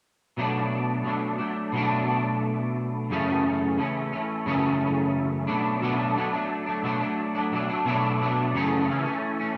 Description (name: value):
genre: indie pop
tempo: 88 BPM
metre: 4/4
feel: straight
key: B minor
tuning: A4 = 440 Hz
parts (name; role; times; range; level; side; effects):
- electric guitar at the edge of break-up; solo; 0.4-9.6 s; F#2 to D4; -26 LUFS; equal; ensemble chorus, vibrato effect
room: moderate lush hall reverb, RT60 2.9 s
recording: rough home demo mix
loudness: -26 LUFS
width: mono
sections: 0.4-5.8 A section; 5.8-9.6 B section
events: none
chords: 0.4 Bm7; 3.1 F#m7; 5.5 Bm7; 8.6 F#m7